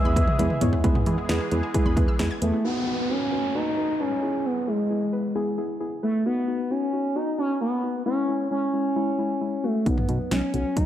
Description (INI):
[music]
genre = synth-pop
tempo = 133 BPM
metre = 4/4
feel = straight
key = E major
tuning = A4 = 440 Hz
[part]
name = expressive portamento lead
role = melody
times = 0.0-10.9 s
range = G#3 to E5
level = -25 LUFS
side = equal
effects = chorus, tape echo
[part]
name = muted felt-like synth keys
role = accompaniment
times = 0.0-10.9 s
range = F#3 to C#5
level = -30 LUFS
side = left 1 dB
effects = chorus
[part]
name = sweeping resonant pad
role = sustained chords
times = 0.0-2.6 s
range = E3 to G#4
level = -34 LUFS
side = equal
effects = chorus
[part]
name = analog pluck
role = arpeggios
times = 0.1-2.6 s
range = G#3 to G#6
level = -33 LUFS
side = right 5 dB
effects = chorus, tape echo
[part]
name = solid FM bass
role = bass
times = 0.1-2.5, 9.9-10.6 s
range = B1 to E3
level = -25 LUFS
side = equal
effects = none
[part]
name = punchy analog drum machine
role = drums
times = 0.2-2.5, 9.9-10.9 s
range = hi-hat, kick drum, snare drum, toms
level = -24 LUFS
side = equal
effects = none
[part]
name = downlifter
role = sound effects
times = 2.6-6.3 s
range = none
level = -34 LUFS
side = equal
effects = none
[sound]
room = moderate recital hall reverb, RT60 1.4 s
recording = none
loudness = -22 LUFS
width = side -11 dB against mid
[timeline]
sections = 0.8-2.6 A section; 2.6-10.9 B section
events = drum fill 0.4-0.8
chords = 0.0 E; 2.6 B; 4.2 E; 6.3 B; 8.1 C#m; 9.9 B